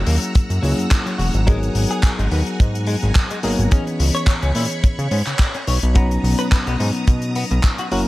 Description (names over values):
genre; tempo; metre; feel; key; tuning
nu-disco, nu disco; 107 BPM; 4/4; swing 55% on 16ths; B major; A4 = 441 Hz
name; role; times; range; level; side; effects
tine electric piano; accompaniment; 0.0-8.1 s; E3 to A#5; -24 LUFS; left 1 dB; sidechain pumping, analog delay
string machine, full ensemble; sustained chords; 0.0-8.1 s; B3 to E6; -29 LUFS; equal; ensemble chorus, vintage 12-bit sampler grit, sidechain pumping
fat analog bass; bass; 0.0-8.0 s; E1 to C#3; -19 LUFS; equal; tube saturation
direct-recorded clean electric guitar; riff; 0.1-8.0 s; F#2 to C#5; -28 LUFS; left 2 dB; lush chorus, low-pass filter
damped 70s drum kit; drums; 0.1-8.0 s; handclaps, hi-hat; -26 LUFS; left 1 dB; none
kick drum; drums; 0.4-7.8 s; none; -14 LUFS; equal; none
room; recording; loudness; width
small room reverb; none; -16 LUFS; side -18 dB against mid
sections
0.0-8.1 A section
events
none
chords
0.0 F#7; 1.5 G#m9; 3.7 C#m7; 6.0 Bmaj7